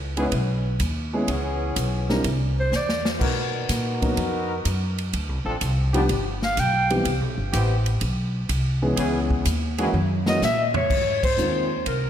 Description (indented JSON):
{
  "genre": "jazz, big band swing",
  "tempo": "125 BPM",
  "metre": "4/4",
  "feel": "swing 69% on 8ths",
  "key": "unclear",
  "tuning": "A4 = 440 Hz",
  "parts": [
    { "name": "upright bass", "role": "bass", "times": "0.0-12.1 s", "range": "G1 to B2", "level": "-25 LUFS", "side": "equal", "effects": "none" },
    { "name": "warm concert grand piano", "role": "accompaniment", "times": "0.2-11.7 s", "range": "Eb3 to B4", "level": "-27 LUFS", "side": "equal", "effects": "none" },
    { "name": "bright trombone section", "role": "sustained chords", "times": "0.2-9.9 s", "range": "E3 to B4", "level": "-30 LUFS", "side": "left 1 dB", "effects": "none" },
    { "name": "swinging big-band drum kit", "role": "drums", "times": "0.2-12.0 s", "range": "crash cymbal, hi-hat, kick drum, ride cymbal, snare drum, toms", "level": "-28 LUFS", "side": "equal", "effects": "none" },
    { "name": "warm clarinet", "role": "melody", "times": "2.6-3.1, 6.4-6.9, 10.3-10.6 s", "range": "C5 to G5", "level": "-26 LUFS", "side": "equal", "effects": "ping-pong delay" },
    { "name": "warm saxophone section", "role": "melody", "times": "10.8-12.1 s", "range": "Bb4 to Db5", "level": "-23 LUFS", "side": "left 2 dB", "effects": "ping-pong delay" }
  ],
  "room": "moderate lush hall reverb, RT60 2.1 s",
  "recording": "dreamy mix soaked in reverb",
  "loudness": "-21 LUFS",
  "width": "side -10 dB against mid",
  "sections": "0.0-10.9 A section; 10.9-12.1 B section",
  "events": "clarinet solo 0.0-10.9; drum fill 2.7-3.2, 9.9-10.9; band accent 11.1",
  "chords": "0.0 E6; 1.3 Dbm7; 2.2 C; 3.2 Bmaj7; 5.1 Dm7; 6.1 G; 7.1 Cmaj7; 9.0 Dbm7; 9.9 Gb9; 10.9 Ab69"
}